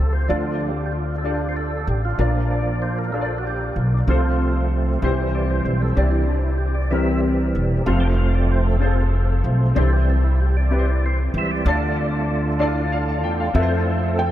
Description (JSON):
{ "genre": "gospel", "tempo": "63 BPM (dotted quarters)", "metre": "6/8", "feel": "straight", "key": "F major", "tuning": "A4 = 440 Hz", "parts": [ { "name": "clear grand piano", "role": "accompaniment", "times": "0.0-14.3 s", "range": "Bb2 to A5", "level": "-25 LUFS", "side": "left 2 dB", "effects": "ensemble chorus" }, { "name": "percussive tonewheel organ", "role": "sustained chords", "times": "0.0-14.3 s", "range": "E3 to A5", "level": "-25 LUFS", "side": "right 2 dB", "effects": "slow rotary speaker, overdrive, chorus vibrato" }, { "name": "upright bass", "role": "bass", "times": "0.0-14.3 s", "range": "E1 to F2", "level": "-20 LUFS", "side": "equal", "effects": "none" }, { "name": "felt-muted upright piano", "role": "melody", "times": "13.6-14.3 s", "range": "A4 to G5", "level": "-24 LUFS", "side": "left 1 dB", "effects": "tape echo" } ], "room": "moderate huge ambient reverb, RT60 7.7 s", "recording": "dreamy mix soaked in reverb", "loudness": "-18 LUFS", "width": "side -13 dB against mid", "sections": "0.0-13.6 A section", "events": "tonewheel organ solo 0.0-13.6; grand piano fill 12.6-13.6", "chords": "0.3 Dm; 2.2 Bb; 4.1 F/C; 5.0 C; 7.9 F; 9.8 C; 11.7 Dm; 13.6 Fmaj7" }